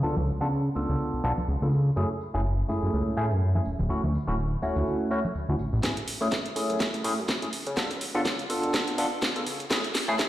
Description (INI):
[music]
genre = filtered disco house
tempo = 124 BPM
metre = 4/4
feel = swing 57% on 16ths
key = F# minor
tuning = A4 = 442 Hz
[part]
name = barky tine electric piano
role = accompaniment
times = 0.0-10.1 s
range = A3 to A4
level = -29 LUFS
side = equal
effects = phaser, sidechain pumping, low-pass filter
[part]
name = fat analog bass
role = bass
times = 0.0-10.3 s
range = D1 to C#3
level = -27 LUFS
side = equal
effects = tube saturation, sidechain pumping, high-pass filter, low-pass filter
[part]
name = tambourine and congas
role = percussion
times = 0.0-5.8 s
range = none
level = -36 LUFS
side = equal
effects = sidechain pumping on perc, low-pass filter on perc
[part]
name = electronic kick drum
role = drums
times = 5.8-10.3 s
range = none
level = -33 LUFS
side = equal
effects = high-pass filter on kick
[part]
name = house drum kit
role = drums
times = 5.8-10.3 s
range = hi-hat, snare drum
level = -29 LUFS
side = equal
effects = high-pass filter on snare, low-pass filter on snare, sidechain pumping on hats, high-pass filter on hats, low-pass filter on hats
[sound]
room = moderate echo chamber reverb, RT60 1.6 s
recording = played on a big sound system in a bare room, stone room reverb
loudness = -25 LUFS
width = side -14 dB against mid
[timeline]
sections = 0.0-5.8 A section; 5.8-10.3 B section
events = build-up 5.8-10.3; drum fill 5.8-10.3; filter sweep 5.8-10.3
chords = 0.0 C#7b9b13; 2.0 F#m7; 3.7 Dmaj7; 5.8 F#m7; 7.5 C#7b9b13; 9.7 F#m7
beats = | 0.03 0.51 1.00 1.48 | 1.97 2.45 2.93 3.42 | 3.90 4.38 4.87 5.35 | 5.84 6.32 6.80 7.29 | 7.77 8.26 8.74 9.22 | 9.71 10.19